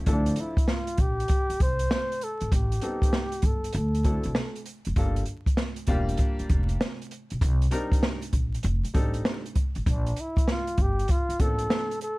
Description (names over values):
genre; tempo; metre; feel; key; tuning
hip hop, jazz-hop; 98 BPM; 4/4; swing 66% on 16ths; unclear; A4 = 435 Hz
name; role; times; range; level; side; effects
warm upright piano; accompaniment; 0.0-11.9 s; F3 to Bb4; -33 LUFS; left 1 dB; none
upright bass; bass; 0.0-11.6 s; E1 to D2; -27 LUFS; equal; none
breathy flugelhorn; melody; 0.1-4.6, 9.9-12.2 s; D4 to C5; -31 LUFS; equal; none
open jazz drum kit; drums; 0.1-12.2 s; hi-hat, kick drum, snare drum; -26 LUFS; equal; none
room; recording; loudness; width
little or no reverb; dark, warm production, vinyl crackle; -24 LUFS; side -22 dB against mid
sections
0.0-12.2 A section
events
none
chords
0.1 Dm9; 2.5 Am7b5; 3.7 D7; 5.0 Gm7; 7.4 Cm7; 8.6 F13; 9.9 Bbmaj7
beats
| 0.07 0.68 1.29 1.90 | 2.52 3.13 3.74 4.35 | 4.97 5.58 6.19 6.80 | 7.42 8.03 8.64 9.25 | 9.86 10.48 11.09 11.70